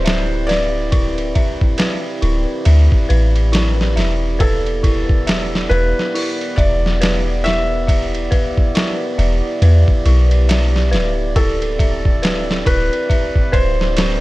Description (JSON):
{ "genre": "trip hop", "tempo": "69 BPM", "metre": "4/4", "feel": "swing 59% on 16ths", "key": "E minor", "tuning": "A4 = 440 Hz", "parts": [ { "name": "felt-muted upright piano", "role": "melody", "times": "0.0-14.2 s", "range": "A4 to E5", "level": "-23 LUFS", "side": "equal", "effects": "dub echo" }, { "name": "dark analog pad", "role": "sustained chords", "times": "0.0-14.2 s", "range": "B3 to D5", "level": "-24 LUFS", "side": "right 3 dB", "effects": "chorus" }, { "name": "dark detuned synth bell", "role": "arpeggios", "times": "0.0-14.2 s", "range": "E4 to E5", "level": "-25 LUFS", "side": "left 4 dB", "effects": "chorus, vintage 12-bit sampler grit, digital delay" }, { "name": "soft 808-style bass", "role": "bass", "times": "0.0-14.2 s", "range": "D1 to E2", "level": "-16 LUFS", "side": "equal", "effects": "none" }, { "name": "trip hop sampler-style drum kit", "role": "drums", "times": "0.1-14.2 s", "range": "hi-hat, kick drum, ride cymbal, snare drum", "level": "-18 LUFS", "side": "equal", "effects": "none" } ], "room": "little or no reverb", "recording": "none", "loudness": "-14 LUFS", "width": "side -19 dB against mid", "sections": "0.0-14.2 A section", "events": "none", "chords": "0.0 D9sus4; 4.4 Em7; 11.4 D9sus4", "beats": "0.05 | 0.92 1.79 2.66 3.53 | 4.40 5.27 6.14 7.01 | 7.88 8.75 9.62 10.49 | 11.36 12.23 13.10 13.97" }